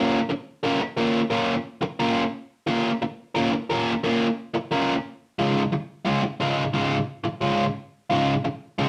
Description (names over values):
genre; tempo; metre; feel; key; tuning
rock; 88 BPM; 4/4; straight; unclear; A4 = 439 Hz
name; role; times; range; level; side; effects
overdriven electric guitar; solo; 0.0-8.9 s; Ab2 to Bb4; -24 LUFS; equal; none
room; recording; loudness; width
wet studio reverb, RT60 0.5 s; rough rehearsal-room recording, warm saturation; -25 LUFS; mono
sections
0.0-8.9 A section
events
none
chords
0.0 Bbm; 5.2 Db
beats
0.47 1.15 1.83 | 2.51 3.19 3.86 4.54 | 5.22 5.90 6.58 7.25 | 7.93 8.61